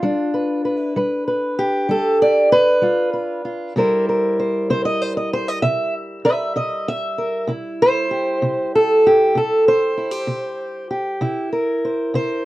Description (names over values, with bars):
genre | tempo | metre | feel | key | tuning
acoustic country blues, solo or duo | 64 BPM (dotted quarters) | 12/8 | straight | C mixolydian | A4 = 440 Hz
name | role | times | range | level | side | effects
fingerpicked steel-string acoustic guitar | solo | 0.0-12.4 s | C3 to E5 | -17 LUFS | equal | none
room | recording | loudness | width
light reverb | worn, warbling old tape, cassette tape, warbly pitch drift | -16 LUFS | side -16 dB against mid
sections
0.0-3.8 A section; 3.8-12.4 B section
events
steel-string acoustic guitar solo 3.8-12.4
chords
0.0 G7; 3.8 C7